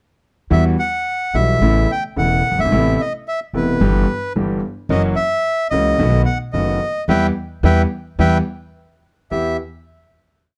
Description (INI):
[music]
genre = tango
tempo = 109 BPM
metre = 4/4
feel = rubato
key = E harmonic minor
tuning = A4 = 438 Hz
[part]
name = bandoneon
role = melody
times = 0.5-9.6 s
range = B4 to G5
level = -22 LUFS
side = equal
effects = none
[part]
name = clear concert grand piano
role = accompaniment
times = 0.5-9.5 s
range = E1 to G4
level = -21 LUFS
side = equal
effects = none
[part]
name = upright bass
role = bass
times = 0.5-9.5 s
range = E1 to E2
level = -21 LUFS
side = equal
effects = none
[sound]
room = moderate studio reverb, RT60 0.6 s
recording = dark, warm production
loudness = -18 LUFS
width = mono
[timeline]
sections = 0.5-9.3 A section; 9.3-10.6 final chord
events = band accent 7.1-9.3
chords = 0.5 Emadd9; 1.6 Aadd9; 2.7 Amadd9; 3.8 Em/G; 4.9 F#7; 6.0 B7; 7.1 Em; 8.8 N.C.; 9.3 Em